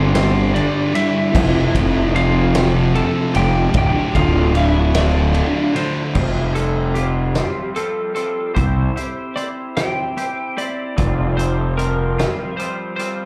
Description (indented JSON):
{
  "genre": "quiet-loud alternative rock",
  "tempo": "50 BPM (dotted quarters)",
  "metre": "6/8",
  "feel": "straight",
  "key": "unclear",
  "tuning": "A4 = 439 Hz",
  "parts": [
    { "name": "lightly driven lead guitar", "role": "melody", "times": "0.0-13.3 s", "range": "C4 to A5", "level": "-25 LUFS", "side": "equal", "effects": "slapback echo" },
    { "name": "percussive tonewheel organ", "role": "sustained chords", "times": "0.0-6.1 s", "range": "F3 to D5", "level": "-32 LUFS", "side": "equal", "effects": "none" },
    { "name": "fuzz guitar", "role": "riff", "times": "0.0-6.1 s", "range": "D2 to G3", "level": "-28 LUFS", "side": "equal", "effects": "distortion" },
    { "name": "thick fuzz guitar", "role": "riff", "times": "0.0-6.1 s", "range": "D2 to G3", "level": "-25 LUFS", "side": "equal", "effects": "distortion" },
    { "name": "fuzz fingered electric bass", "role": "bass", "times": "0.0-12.2 s", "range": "D1 to C2", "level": "-20 LUFS", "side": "equal", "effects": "overdrive" },
    { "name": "loose indie drum kit", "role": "drums", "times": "0.1-13.2 s", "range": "crash cymbal, hi-hat, kick drum, ride cymbal, snare drum", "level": "-26 LUFS", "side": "equal", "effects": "none" },
    { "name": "twangy electric guitar", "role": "arpeggios", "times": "6.1-13.3 s", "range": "F3 to C5", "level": "-29 LUFS", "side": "equal", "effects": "analog chorus, slapback echo" }
  ],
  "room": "little or no reverb",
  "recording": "live gig heard through the venue's PA, club reverb",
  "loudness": "-18 LUFS",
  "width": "mono",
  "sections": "0.0-6.2 A section; 6.2-13.3 B section",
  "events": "none",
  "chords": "0.0 G5; 1.3 Fmaj7; 3.8 Dm; 6.2 Fsus2; 8.6 C; 11.0 Fsus2"
}